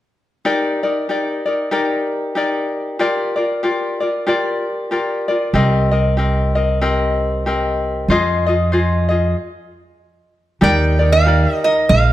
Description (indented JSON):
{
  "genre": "Hawaiian",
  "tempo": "94 BPM",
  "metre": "4/4",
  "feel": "swing 58% on 8ths",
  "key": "Eb major",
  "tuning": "A4 = 440 Hz",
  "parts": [
    { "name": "tenor ukulele", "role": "accompaniment", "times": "0.4-12.1 s", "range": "C4 to Eb5", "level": "-18 LUFS", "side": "left 2 dB", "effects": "none" },
    { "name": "upright bass", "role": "bass", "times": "5.5-12.1 s", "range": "Bb1 to F2", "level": "-16 LUFS", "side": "right 1 dB", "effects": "none" },
    { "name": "lap resonator guitar", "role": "melody", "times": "10.6-12.1 s", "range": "Eb5 to G5", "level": "-15 LUFS", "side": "right 2 dB", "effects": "none" }
  ],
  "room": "moderate recital hall reverb, RT60 1.6 s",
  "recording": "none",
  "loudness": "-15 LUFS",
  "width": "side -14 dB against mid",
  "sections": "0.5-10.6 A section; 10.6-12.1 B section",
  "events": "stop 9.4-10.6",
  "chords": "0.5 Ebmaj7; 3.0 Gm7; 5.5 Cm7; 8.1 Fm7; 10.6 Ebmaj7"
}